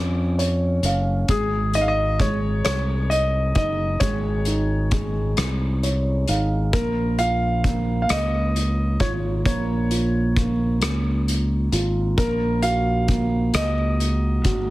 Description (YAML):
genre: six-eight pop ballad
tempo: 44 BPM (dotted quarters)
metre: 6/8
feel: straight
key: unclear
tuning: A4 = 441 Hz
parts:
  - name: clear concert grand piano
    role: melody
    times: 0.0-14.7 s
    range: Ab4 to F5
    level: -26 LUFS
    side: equal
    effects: none
  - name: dark upright piano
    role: accompaniment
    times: 0.0-14.7 s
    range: Ab3 to F5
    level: -26 LUFS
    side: right 2 dB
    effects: none
  - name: modern bright fingered electric bass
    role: bass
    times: 0.0-14.7 s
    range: Gb1 to F2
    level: -22 LUFS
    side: equal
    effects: none
  - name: loose indie drum kit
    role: drums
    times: 0.4-14.7 s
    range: hi-hat, kick drum, rim click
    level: -26 LUFS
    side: equal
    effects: none
room: light reverb, small room ambience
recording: heavily compressed radio sound, multiband compression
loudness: -19 LUFS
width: side -17 dB against mid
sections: 0.0-14.7 A section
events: upright piano fill 0.0-1.3, 5.4-6.7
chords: 0.0 Db; 1.3 Absus4; 6.7 Bbm; 12.2 Gb